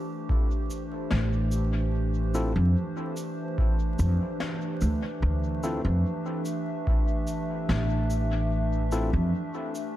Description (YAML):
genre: ambient dub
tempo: 73 BPM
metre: 4/4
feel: straight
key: D minor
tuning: A4 = 440 Hz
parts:
  - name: warbly tape-like pad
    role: sustained chords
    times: 0.0-10.0 s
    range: E3 to E5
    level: -32 LUFS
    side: equal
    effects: chorus, built-in reverb, vintage 12-bit sampler grit
  - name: electronic kick drum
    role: drums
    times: 0.3-7.0 s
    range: none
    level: -26 LUFS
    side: equal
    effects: none
  - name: cabasa and snare drum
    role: drums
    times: 0.7-9.9 s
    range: none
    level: -38 LUFS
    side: left 2 dB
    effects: dub echo
  - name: upright bass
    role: bass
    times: 1.1-9.3 s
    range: A1 to F2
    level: -25 LUFS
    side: equal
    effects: none
  - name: tine electric piano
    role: stabs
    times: 2.3-9.1 s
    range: C4 to A4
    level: -36 LUFS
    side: left 2 dB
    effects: dub echo
room: light reverb, small room ambience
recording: dark, warm production, vinyl crackle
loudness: -25 LUFS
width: side -14 dB against mid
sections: 0.0-10.0 A section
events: none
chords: 0.0 Dm9